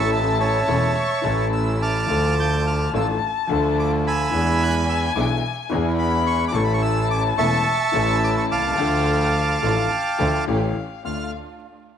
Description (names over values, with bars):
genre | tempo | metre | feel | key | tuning
tango | 107 BPM | 4/4 | rubato | D harmonic minor | A4 = 440 Hz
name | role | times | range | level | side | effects
bandoneon | melody | 0.0-11.3 s | C#5 to G6 | -23 LUFS | right 4 dB | none
warm violin | second line | 0.0-11.3 s | F5 to C#6 | -27 LUFS | left 11 dB | none
warm concert grand piano | accompaniment | 0.0-11.3 s | E1 to A4 | -26 LUFS | left 8 dB | none
warm studio string section | stabs | 0.0-11.3 s | G#3 to G4 | -30 LUFS | right 9 dB | tape echo
rich double bass | bass | 0.0-11.3 s | E1 to E2 | -23 LUFS | right 1 dB | none
room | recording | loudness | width
light reverb, small room reverb | 1960s-style stereo with parts hard left and right, vinyl crackle | -18 LUFS | side -8 dB against mid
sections
0.0-11.0 A section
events
none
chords
0.0 A; 2.1 Dm; 4.3 E7; 6.5 A; 8.8 Dm; 10.5 A7; 11.0 Dm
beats
0.40 0.95 1.52 | 2.09 2.65 3.21 3.77 | 4.32 4.88 5.43 5.98 | 6.54 7.10 7.66 8.21 | 8.77 9.34 9.90 10.47 | 11.04